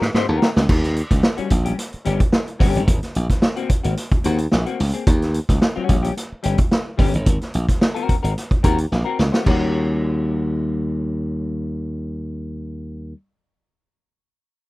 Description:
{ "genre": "funk", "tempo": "109 BPM", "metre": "4/4", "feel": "straight", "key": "Eb mixolydian", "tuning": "A4 = 440 Hz", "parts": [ { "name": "glassy slap bass", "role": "bass", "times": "0.0-13.1 s", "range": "G1 to Ab2", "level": "-21 LUFS", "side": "equal", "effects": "none" }, { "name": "vintage drum kit", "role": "drums", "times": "0.0-9.6 s", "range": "crash cymbal, hi-hat, kick drum, snare drum", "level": "-18 LUFS", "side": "equal", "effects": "none" }, { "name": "semi-hollow electric guitar", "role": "accompaniment", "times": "0.1-13.2 s", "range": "G3 to C5", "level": "-26 LUFS", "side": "left 6 dB", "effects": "lush chorus" } ], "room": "little or no reverb", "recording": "rough home demo mix", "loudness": "-17 LUFS", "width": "side -20 dB against mid", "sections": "0.7-9.5 A section; 9.5-11.7 B section", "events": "drum fill 0.0-0.7, 8.9-9.5", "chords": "0.0 Ab9; 0.7 Eb7; 2.9 Ab9; 5.1 Eb7; 7.3 Ab9; 9.5 Eb7#9", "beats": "0.14 | 0.69 1.24 1.78 2.33 | 2.88 3.43 3.98 4.52 | 5.07 5.62 6.17 6.72 | 7.26 7.81 8.36 8.91 | 9.46 10.01 10.56 11.11" }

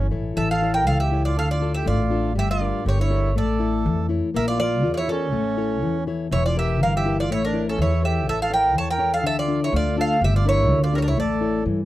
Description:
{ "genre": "greek folk, Greek bouzouki band", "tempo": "122 BPM", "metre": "2/4", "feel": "straight", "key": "unclear", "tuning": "A4 = 440 Hz", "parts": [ { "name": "Greek bouzouki", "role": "melody", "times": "0.0-11.6 s", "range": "A4 to A5", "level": "-24 LUFS", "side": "right 1 dB", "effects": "none" }, { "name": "accordion", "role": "second line", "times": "0.0-11.6 s", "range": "C#4 to C#5", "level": "-28 LUFS", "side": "right 6 dB", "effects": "none" }, { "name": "fingerpicked plugged-in steel-string acoustic guitar", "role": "accompaniment", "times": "0.0-11.8 s", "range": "D3 to E5", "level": "-25 LUFS", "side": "left 5 dB", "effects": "none" }, { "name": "upright bass", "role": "bass", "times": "0.0-11.8 s", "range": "E1 to G2", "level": "-23 LUFS", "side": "equal", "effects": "none" } ], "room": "little or no reverb", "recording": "dry, close 1970s-style studio recording", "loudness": "-19 LUFS", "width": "side -15 dB against mid", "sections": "0.0-4.3 A section; 4.3-11.8 A section", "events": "speeding up 0.0-11.8", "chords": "0.0 A; 1.4 Dm; 2.4 Gm; 3.4 A; 4.3 Bb; 5.3 A; 6.3 Edim; 7.3 A; 9.2 Dm; 10.2 Gm; 11.2 A", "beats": "| 0.36 0.86 | 1.36 1.86 | 2.36 2.85 | 3.35 3.85 | 4.34 4.83 | 5.33 5.82 | 6.31 6.80 | 7.29 7.78 | 8.27 8.75 | 9.24 9.72 | 10.21 10.69 | 11.18 11.66" }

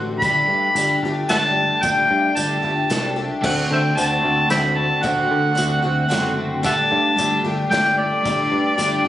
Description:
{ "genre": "folk rock and heartland rock", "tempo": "112 BPM", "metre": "3/4", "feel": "straight", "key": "unclear", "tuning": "A4 = 440 Hz", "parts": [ { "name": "picked twelve-string acoustic guitar", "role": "accompaniment", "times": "0.0-9.1 s", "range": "D3 to G4", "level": "-24 LUFS", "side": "left 3 dB", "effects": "ensemble chorus" }, { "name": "picked electric bass", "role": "bass", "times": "0.0-9.1 s", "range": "F#1 to D3", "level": "-25 LUFS", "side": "equal", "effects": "none" }, { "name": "overdriven harmonica", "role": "melody", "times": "0.2-9.1 s", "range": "C5 to B5", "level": "-19 LUFS", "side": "equal", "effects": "none" }, { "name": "unplugged drum kit", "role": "drums", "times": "0.2-8.9 s", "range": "crash cymbal, hi-hat, kick drum, snare drum", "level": "-28 LUFS", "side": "equal", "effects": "none" }, { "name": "twelve-string electric guitar", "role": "riff", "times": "3.4-9.1 s", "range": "D3 to G4", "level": "-26 LUFS", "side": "right 2 dB", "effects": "spring reverb" } ], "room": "light reverb", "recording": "recorded on a phone in the room, studio reverb, compression, nothing above 10.8 kHz", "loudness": "-16 LUFS", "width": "side -13 dB against mid", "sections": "0.0-9.1 A section", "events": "none", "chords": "0.2 Gsus2; 3.4 D7; 6.6 Gsus2", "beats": "| 0.22 0.76 1.29 | 1.83 2.37 2.90 | 3.44 3.97 4.51 | 5.04 5.58 6.11 | 6.65 7.18 7.72 | 8.25 8.79" }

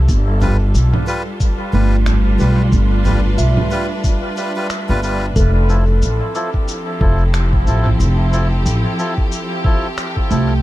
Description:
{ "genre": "ambient dub", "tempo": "91 BPM", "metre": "4/4", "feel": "swing 58% on 16ths", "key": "unclear", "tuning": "A4 = 441 Hz", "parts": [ { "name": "rich studio string section", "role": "sustained chords", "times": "0.0-10.6 s", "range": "F3 to B4", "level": "-23 LUFS", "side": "equal", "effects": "none" }, { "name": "upright bass", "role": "bass", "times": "0.0-10.6 s", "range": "F1 to C2", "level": "-14 LUFS", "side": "equal", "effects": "tube saturation" }, { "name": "electronic kick drum", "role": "drums", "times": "0.1-10.3 s", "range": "none", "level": "-17 LUFS", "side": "equal", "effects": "none" }, { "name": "electronic shaker, congas and finger snaps", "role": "drums", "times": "0.1-10.5 s", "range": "none", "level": "-24 LUFS", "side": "right 2 dB", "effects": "dub echo" }, { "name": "melodica", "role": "stabs", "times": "0.4-10.5 s", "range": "F3 to B4", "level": "-24 LUFS", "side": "left 1 dB", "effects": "low-pass filter, dub echo" }, { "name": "kalimba", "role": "arpeggios", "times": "1.7-10.6 s", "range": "A3 to D6", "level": "-26 LUFS", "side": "right 5 dB", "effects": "dub echo" } ], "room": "small room ambience", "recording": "echo-heavy mix", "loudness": "-14 LUFS", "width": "side -16 dB against mid", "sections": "0.0-5.4 A section; 5.4-10.6 A section", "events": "none", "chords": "0.1 G7; 5.4 Fmaj7", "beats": "| 0.09 0.75 1.41 2.06 | 2.72 3.38 4.04 4.70 | 5.36 6.02 6.68 7.34 | 8.00 8.66 9.32 9.98" }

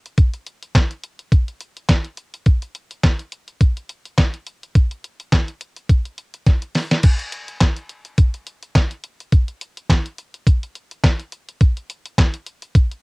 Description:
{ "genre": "funk", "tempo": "105 BPM", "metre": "4/4", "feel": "swing 56% on 16ths", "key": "none", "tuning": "none", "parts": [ { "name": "detuned 8-bit digital drum machine", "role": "drums", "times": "0.1-13.0 s", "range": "crash cymbal, handclaps, hi-hat, kick drum, snare drum", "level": "-15 LUFS", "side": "equal", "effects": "cassette tape" } ], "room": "light reverb", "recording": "home recording on cassette", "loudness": "-17 LUFS", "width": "side -31 dB against mid", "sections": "0.0-7.0 A section; 7.0-13.0 A section", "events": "drum fill 6.5-7.0", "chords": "none", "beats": "| 0.18 0.75 1.32 1.89 | 2.46 3.04 3.61 4.18 | 4.75 5.32 5.89 6.46 | 7.04 7.61 8.18 8.75 | 9.32 9.89 10.46 11.04 | 11.61 12.18 12.75" }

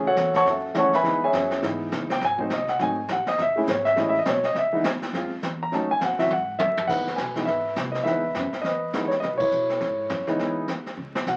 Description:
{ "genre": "jazz piano trio", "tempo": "205 BPM", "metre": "4/4", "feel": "swing 61% on 8ths", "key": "C# minor", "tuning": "A4 = 438 Hz", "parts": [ { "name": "dark grand piano", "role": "melody", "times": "0.0-11.4 s", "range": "E3 to C#6", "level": "-25 LUFS", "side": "equal", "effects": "none" }, { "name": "upright bass", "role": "bass", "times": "0.0-11.4 s", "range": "F#1 to G#2", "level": "-38 LUFS", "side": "equal", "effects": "none" }, { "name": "jazz brush drum kit", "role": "drums", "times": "0.2-11.4 s", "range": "brushed snare drum, crash cymbal, hi-hat, kick drum, snare drum, toms", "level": "-33 LUFS", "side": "equal", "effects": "none" } ], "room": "wet small room reverb, RT60 0.6 s", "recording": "very old 78 rpm record, vinyl crackle", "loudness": "-24 LUFS", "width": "mono", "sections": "0.0-6.9 A section; 6.9-11.4 B section", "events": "grand piano solo 0.0-6.9; drum fill 6.3-6.9, 11.0; band accent 9.4", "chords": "0.0 F#m7; 1.0 C#m7; 2.2 G#7b9; 3.4 F#m7; 4.6 C#m; 5.1 Fmmaj7; 5.7 D#m7b5; 6.3 G#5; 6.9 C#m7", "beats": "0.17 0.46 0.76 | 1.05 1.34 1.63 1.92 | 2.22 2.51 2.80 3.09 | 3.38 3.68 3.97 4.26 | 4.55 4.84 5.14 5.43 | 5.72 6.01 6.30 6.60 | 6.89 7.18 7.47 7.76 | 8.06 8.35 8.64 8.94 | 9.23 9.52 9.81 10.10 | 10.40 10.69 10.98 11.27" }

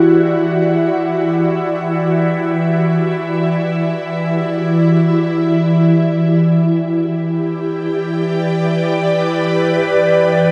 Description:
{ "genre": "ambient", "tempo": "free time", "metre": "none", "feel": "none", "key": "E minor", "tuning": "A4 = 442 Hz", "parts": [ { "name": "ethereal airy pad", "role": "solo", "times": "0.0-10.5 s", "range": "E3 to D5", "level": "-15 LUFS", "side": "equal", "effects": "ensemble chorus, built-in reverb, phaser, tape echo" } ], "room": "wet huge ambient reverb, RT60 8.5 s", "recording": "dreamy mix soaked in reverb", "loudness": "-16 LUFS", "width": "mono", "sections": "0.0-10.5 A section", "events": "none", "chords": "0.0 Em7; 5.6 G/E", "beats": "free time" }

